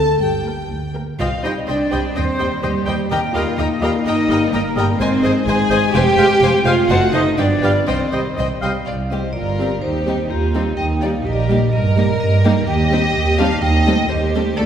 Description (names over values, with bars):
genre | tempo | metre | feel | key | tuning
cinematic, playful, whimsical film cue | 126 BPM | 2/4 | straight | C minor | A4 = 440 Hz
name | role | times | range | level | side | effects
warm chamber violin section | melody | 0.0-14.6 s | Eb4 to Ab5 | -26 LUFS | left 3 dB | none
warm chamber violin section | second line | 0.0-14.7 s | C4 to Bb5 | -27 LUFS | left 4 dB | none
dark chamber viola section | accompaniment | 0.0-14.7 s | F#3 to Eb5 | -25 LUFS | equal | none
mellow French horn section | sustained chords | 0.0-8.6 s | Eb3 to A4 | -24 LUFS | left 4 dB | none
clear chamber double bass section | bass | 0.0-14.7 s | F1 to G2 | -20 LUFS | right 2 dB | none
warm chamber cello section | bass | 0.0-14.7 s | D2 to Bb4 | -21 LUFS | right 2 dB | none
vibraphone with medium hard mallets | melody | 1.2-14.7 s | G4 to A5 | -26 LUFS | right 1 dB | none
bright concert flute | second line | 1.2-8.4 s | G4 to Ab5 | -25 LUFS | left 2 dB | none
warm clarinet | second line | 1.4-8.7 s | Bb4 to F5 | -30 LUFS | left 1 dB | none
warm cor anglais | second line | 1.4-8.7 s | D#5 to G5 | -31 LUFS | right 1 dB | none
mellow bassoon | accompaniment | 1.4-8.7 s | G3 to A3 | -29 LUFS | equal | none
room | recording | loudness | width
wet scoring stage reverb, RT60 1.9 s | heard from further back in the room | -15 LUFS | side -9 dB against mid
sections
0.0-1.2 A section; 1.2-8.9 B section; 8.9-14.7 B section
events
none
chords
0.2 Gm; 1.2 Cm; 2.1 Cm/Eb; 3.1 Eb; 4.1 Eb/G; 5.0 Ab; 5.9 Fm; 6.9 F#dim7; 7.4 G7; 7.9 Cm; 8.9 C5; 9.8 Cm/Eb; 10.8 Eb; 11.7 Eb/G; 12.7 Cm/Eb; 13.6 Am7b5/Eb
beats
| 0.20 0.70 | 1.19 1.67 | 2.15 2.62 | 3.10 3.58 | 4.05 4.53 | 5.00 5.47 | 5.95 6.42 | 6.90 7.38 | 7.88 8.38 | 8.87 9.35 | 9.83 10.31 | 10.78 11.26 | 11.74 12.21 | 12.69 13.16 | 13.63 14.11 | 14.58